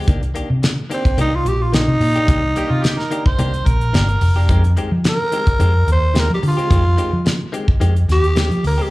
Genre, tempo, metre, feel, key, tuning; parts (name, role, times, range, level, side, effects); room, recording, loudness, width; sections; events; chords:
straight-eighth soul blues; 108 BPM; 4/4; swing 53% on 16ths; A4 = 441 Hz
direct-recorded clean electric guitar; stabs; 0.0-8.9 s; Eb3 to G4; -27 LUFS; left 3 dB; harmonic tremolo, slapback echo, plate reverb
vintage muted fingered electric bass; bass; 0.1-8.8 s; F1 to F3; -16 LUFS; equal
damped 70s drum kit; drums; 0.1-8.8 s; hi-hat, kick drum, snare drum; -18 LUFS; equal
growling tenor saxophone; melody; 0.9-8.9 s; C4 to C5; -19 LUFS; right 1 dB; plate reverb, slapback echo
warm harmonica; second line; 2.6-4.7 s; F4 to C5; -25 LUFS; right 3 dB; overdrive, plate reverb, slapback echo
little or no reverb; live gig heard through the venue's PA, club reverb; -14 LUFS; side -19 dB against mid
0.0-8.9 A section
0.1 Cm9; 4.5 Fm9